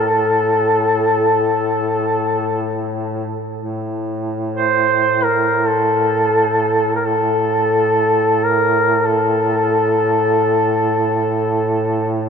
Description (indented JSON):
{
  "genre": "caucasian folk, Caucasian lament",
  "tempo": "free time",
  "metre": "none",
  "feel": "none",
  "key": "A phrygian",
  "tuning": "A4 = 439 Hz",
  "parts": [
    { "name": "warm duduk", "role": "melody", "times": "0.0-12.1 s", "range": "A4 to C5", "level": "-16 LUFS", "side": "equal", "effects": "none" },
    { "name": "mellow duduk", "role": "drone", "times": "0.0-12.3 s", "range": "A2", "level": "-21 LUFS", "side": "right 1 dB", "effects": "none" }
  ],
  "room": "wet cathedral reverb, RT60 6.2 s",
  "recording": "dark, warm production",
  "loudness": "-14 LUFS",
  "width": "side -6 dB against mid",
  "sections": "0.0-3.6 A section; 3.6-12.3 A section",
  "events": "none",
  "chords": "none"
}